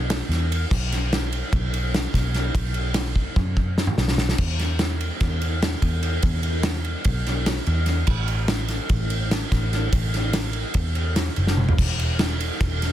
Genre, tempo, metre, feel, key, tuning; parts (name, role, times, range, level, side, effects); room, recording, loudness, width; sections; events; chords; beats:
math rock and midwest emo; 292 BPM (eighths); 9/8; straight; A4 = 436 Hz
vintage muted picked electric bass; bass; 0.0-12.9 s; E1 to F#2; -24 LUFS; equal
loose indie drum kit; drums; 0.1-12.9 s; crash cymbal, kick drum, ride cymbal, snare drum, toms; -23 LUFS; equal
light reverb; dense, heavily limited modern master; -20 LUFS; side -12 dB against mid
0.0-11.8 A section; 11.8-12.9 B section
drum fill 3.2-4.4, 11.5-11.8
0.08 0.28 0.49 | 0.70 0.90 1.11 1.31 1.52 1.72 1.93 2.13 2.34 | 2.55 2.75 2.96 3.16 3.37 3.57 3.78 3.98 4.19 | 4.39 4.60 4.80 5.01 5.21 5.42 5.62 5.83 6.03 | 6.24 6.44 6.65 6.85 7.06 7.26 7.47 7.67 7.88 | 8.08 8.29 8.49 8.70 8.90 9.11 9.31 9.52 9.72 | 9.93 10.13 10.34 10.54 10.75 10.96 11.16 11.37 11.57 | 11.78 11.98 12.19 12.40 12.60 12.81